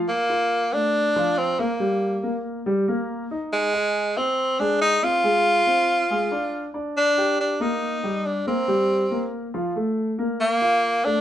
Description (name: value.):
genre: jazz.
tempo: 140 BPM.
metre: 4/4.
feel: straight.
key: Bb major.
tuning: A4 = 440 Hz.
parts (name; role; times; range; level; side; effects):
dark concert grand piano; accompaniment; 0.0-11.2 s; F3 to Ab5; -25 LUFS; left 1 dB; none.
bright tenor saxophone; melody; 0.1-11.2 s; Ab3 to F4; -20 LUFS; equal; none.
room: wet studio reverb, RT60 0.8 s.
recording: band playing live in one room, nothing above 10.7 kHz, faint mains hum.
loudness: -20 LUFS.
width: side -11 dB against mid.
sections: 0.1-11.2 A section.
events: none.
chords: 0.1 Bbmaj7; 1.8 Eb; 3.5 Ab; 5.2 Fm; 6.1 Ddim/Ab; 7.0 Ebmaj7; 8.7 C5; 9.5 Bb5.